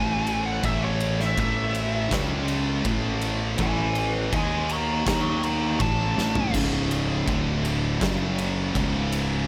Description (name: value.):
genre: stoner and doom metal.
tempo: 81 BPM.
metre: 4/4.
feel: straight.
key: unclear.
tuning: A4 = 440 Hz.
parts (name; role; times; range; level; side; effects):
fuzz lead guitar; melody; 0.0-6.5 s; B4 to C#6; -31 LUFS; equal; wah, distortion, digital delay.
heavy high-gain guitar; riff; 0.0-9.5 s; C#2 to D#4; -34 LUFS; equal; distortion.
thick fuzz guitar; riff; 0.0-9.5 s; C#2 to D#4; -32 LUFS; equal; distortion.
thick fuzz guitar; riff; 0.0-9.5 s; C#2 to D#4; -32 LUFS; equal; none.
fuzz fingered electric bass; bass; 0.0-9.4 s; C#1 to D#2; -32 LUFS; equal; overdrive.
oversized low-tuned drum kit; drums; 0.3-9.3 s; crash cymbal, kick drum, ride cymbal, snare drum, toms; -31 LUFS; equal; none.
room: studio reverb.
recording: none.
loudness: -25 LUFS.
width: mono.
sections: 0.0-6.5 A section; 6.5-9.5 B section.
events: lead electric guitar solo 0.0-6.5; drum fill 6.2-6.5.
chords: 0.0 A5; 2.1 C#5; 2.9 A5; 4.3 D#5; 5.8 A5; 6.5 C#5; 7.3 D5; 8.0 F#5; 8.8 C#5.